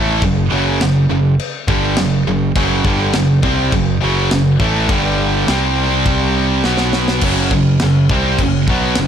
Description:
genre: heavy metal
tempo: 103 BPM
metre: 4/4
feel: straight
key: unclear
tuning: A4 = 441 Hz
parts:
  - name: heavy high-gain guitar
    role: riff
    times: 0.0-9.1 s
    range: F#2 to B#3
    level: -17 LUFS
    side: right 8 dB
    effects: distortion
  - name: tight distorted guitar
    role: riff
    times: 0.0-9.1 s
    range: F#2 to B#3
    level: -18 LUFS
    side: left 9 dB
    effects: distortion
  - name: modern bright picked electric bass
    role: bass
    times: 0.0-9.1 s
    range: F#1 to B#1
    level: -19 LUFS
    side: left 1 dB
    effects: none
  - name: tight metal drum kit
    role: drums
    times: 0.2-9.1 s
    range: china cymbal, crash cymbal, kick drum, snare drum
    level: -20 LUFS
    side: left 1 dB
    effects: none
room: studio reverb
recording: blown-out, overdriven recording, overdrive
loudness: -12 LUFS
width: side -8 dB against mid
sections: 0.0-7.2 A section; 7.2-9.1 B section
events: drum fill 6.6-7.2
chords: 0.0 F#m; 4.9 G5; 5.5 C5; 6.6 B5; 7.2 F#5

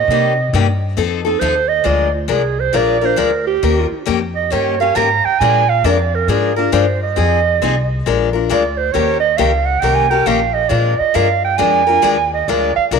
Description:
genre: acoustic string swing (jazz manouche)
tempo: 136 BPM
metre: 4/4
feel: swing 65% on 8ths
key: Bb mixolydian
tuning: A4 = 435 Hz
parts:
  - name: dark clarinet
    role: second line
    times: 0.0-12.9 s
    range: F4 to Bb5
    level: -16 LUFS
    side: right 8 dB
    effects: none
  - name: upright bass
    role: bass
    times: 0.0-13.0 s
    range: Bb1 to C3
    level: -20 LUFS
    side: left 1 dB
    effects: none
  - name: picked steel-string acoustic guitar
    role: accompaniment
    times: 0.1-13.0 s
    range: C3 to Bb4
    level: -18 LUFS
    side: left 11 dB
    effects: none
room: moderate plate reverb, RT60 2.8 s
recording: 1960s-style stereo with parts hard left and right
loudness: -13 LUFS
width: side -5 dB against mid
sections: 0.0-1.9 A section; 1.9-13.0 A section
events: clarinet solo 0.0-13.0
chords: 0.1 Cm7; 1.0 F7; 1.9 Bb7; 3.6 Eb7; 5.4 Bb7; 7.2 Fm7; 8.1 Bb7; 8.9 Eb7; 10.7 Bb7

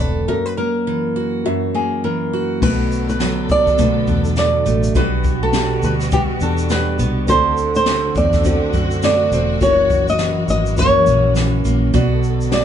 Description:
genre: acoustic pop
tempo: 103 BPM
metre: 4/4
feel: swing 60% on 16ths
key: unclear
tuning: A4 = 443 Hz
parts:
  - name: flamenco guitar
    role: melody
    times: 0.0-12.6 s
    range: G4 to Eb5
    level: -18 LUFS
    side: equal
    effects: none
  - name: felt-muted upright piano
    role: accompaniment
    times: 0.0-12.6 s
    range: G3 to E5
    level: -26 LUFS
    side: left 6 dB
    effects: none
  - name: picked steel-string acoustic guitar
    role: accompaniment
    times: 0.0-12.6 s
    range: F#2 to A4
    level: -21 LUFS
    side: right 4 dB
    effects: none
  - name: vintage muted fingered electric bass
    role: bass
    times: 0.0-12.6 s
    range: E1 to F#2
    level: -21 LUFS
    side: left 1 dB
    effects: none
  - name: warm studio string section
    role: sustained chords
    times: 2.6-12.6 s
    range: D3 to A4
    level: -27 LUFS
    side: left 2 dB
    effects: none
  - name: jazz brush drum kit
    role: drums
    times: 2.6-12.6 s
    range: crash cymbal, kick drum, shaker, snare drum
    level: -22 LUFS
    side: left 1 dB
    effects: none
room: wet studio ambience, RT60 0.5 s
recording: heard from further back in the room, nothing above 10.4 kHz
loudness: -14 LUFS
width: side -9 dB against mid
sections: 0.0-2.6 A section; 2.6-12.6 B section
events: none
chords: 0.3 F#7; 2.6 Bm7; 5.0 Gmaj7/B; 7.3 D7; 9.6 F#7; 11.9 Bm7

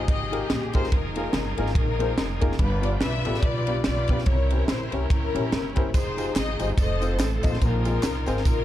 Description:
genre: uptempo gospel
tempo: 144 BPM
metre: 4/4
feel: swing 58% on 8ths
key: F minor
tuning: A4 = 437 Hz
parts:
  - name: rich studio string section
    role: melody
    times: 0.0-8.6 s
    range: Db4 to E5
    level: -29 LUFS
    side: left 3 dB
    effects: tape echo
  - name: bright tonewheel organ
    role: sustained chords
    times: 0.0-8.6 s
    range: C3 to G5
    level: -37 LUFS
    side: right 4 dB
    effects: slow rotary speaker, overdrive
  - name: upright bass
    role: bass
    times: 0.0-8.6 s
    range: F1 to C2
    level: -27 LUFS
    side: equal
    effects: none
  - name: crisp fusion drum kit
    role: drums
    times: 0.1-8.6 s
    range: kick drum, ride cymbal, snare drum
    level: -26 LUFS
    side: equal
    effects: none
  - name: warm upright piano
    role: accompaniment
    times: 0.3-8.4 s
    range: G2 to Eb5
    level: -31 LUFS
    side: left 3 dB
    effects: none
  - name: tambourine and handclaps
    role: percussion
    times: 5.9-8.6 s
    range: none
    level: -40 LUFS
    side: left 1 dB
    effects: none
room: little or no reverb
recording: dark, warm production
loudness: -22 LUFS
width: side -13 dB against mid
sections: 0.0-8.6 A section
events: none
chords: 0.0 Fm11; 2.6 G7; 4.3 C7b9; 5.9 Fm9; 6.8 F7; 7.6 Bb9sus4

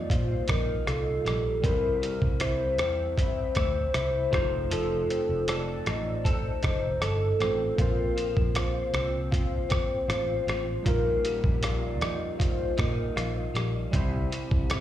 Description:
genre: indie pop, bedroom pop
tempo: 78 BPM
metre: 4/4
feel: straight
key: unclear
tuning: A4 = 440 Hz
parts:
  - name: hollow clarinet-like synth lead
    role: melody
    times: 0.0-13.6 s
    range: A4 to D5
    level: -30 LUFS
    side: left 2 dB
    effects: wide subtle chorus, plate reverb, slapback echo, ping-pong delay
  - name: barky tine electric piano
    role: accompaniment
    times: 0.0-14.8 s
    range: G3 to C5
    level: -37 LUFS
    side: right 4 dB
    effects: overdrive, plate reverb, slapback echo
  - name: electric guitar through a small old amp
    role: accompaniment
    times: 0.0-14.8 s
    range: Bb2 to A4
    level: -35 LUFS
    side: left 1 dB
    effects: ensemble chorus, warbly pitch drift, plate reverb, slapback echo
  - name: vintage muted fingered electric bass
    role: bass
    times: 0.1-14.8 s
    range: F1 to Bb2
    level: -31 LUFS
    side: equal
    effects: none
  - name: lo-fi sampler-style drum kit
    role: drums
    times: 0.1-14.8 s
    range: hi-hat, kick drum, rim click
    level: -28 LUFS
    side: equal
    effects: none
room: moderate club ambience, RT60 0.5 s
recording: live gig heard through the venue's PA, recital hall reverb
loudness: -25 LUFS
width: side -12 dB against mid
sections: 0.0-14.8 A section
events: none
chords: 0.0 Ebadd9/Bb; 1.6 C; 4.3 F7; 7.8 Bbsus2; 10.9 Ebadd9/Bb; 13.9 C

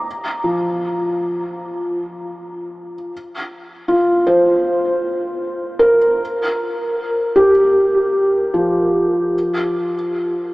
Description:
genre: ambient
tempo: 78 BPM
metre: 4/4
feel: straight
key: unclear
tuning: A4 = 440 Hz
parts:
  - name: felt-muted upright piano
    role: solo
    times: 0.0-10.5 s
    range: F3 to Bb5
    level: -16 LUFS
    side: equal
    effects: diffuse ambient delay
room: wet huge ambient reverb, RT60 8.1 s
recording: small speaker sound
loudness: -15 LUFS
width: side -20 dB against mid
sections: 0.0-10.5 A section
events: none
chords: 0.1 N.C.; 3.1 Fsus4; 6.2 Fsus24; 9.3 N.C.

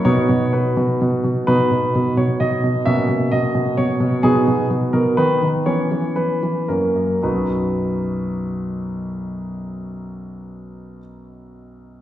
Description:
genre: classical-period piano sonatina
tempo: 107-132 BPM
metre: 3/4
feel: straight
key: B major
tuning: A4 = 440 Hz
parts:
  - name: clear concert grand piano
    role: solo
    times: 0.0-12.0 s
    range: B1 to E5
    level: -17 LUFS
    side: equal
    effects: none
room: wet recital hall reverb, RT60 1.4 s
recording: heard from further back in the room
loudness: -17 LUFS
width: side -12 dB against mid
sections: 0.0-1.5 A section; 1.5-7.2 B section; 7.2-10.6 C section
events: slowing down 3.5-7.2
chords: 0.1 B; 2.9 Bmaj9; 4.2 B; 5.2 B/D#; 5.7 C#m7/E; 6.7 F#; 7.2 B

